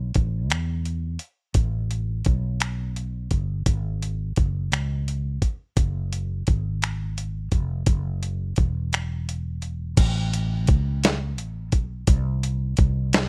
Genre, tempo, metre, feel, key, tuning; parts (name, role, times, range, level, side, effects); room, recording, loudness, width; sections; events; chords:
slow six-eight R&B; 57 BPM (dotted quarters); 6/8; straight; A4 = 440 Hz
fretless electric bass; bass; 0.0-13.3 s; E1 to E2; -28 LUFS; equal
dusty soul sampler-style drum kit; drums; 0.1-13.3 s; crash cymbal, finger snaps, hi-hat, kick drum, snare drum; -23 LUFS; equal
little or no reverb; -25 LUFS; mono
0.0-10.0 A section; 10.0-13.3 B section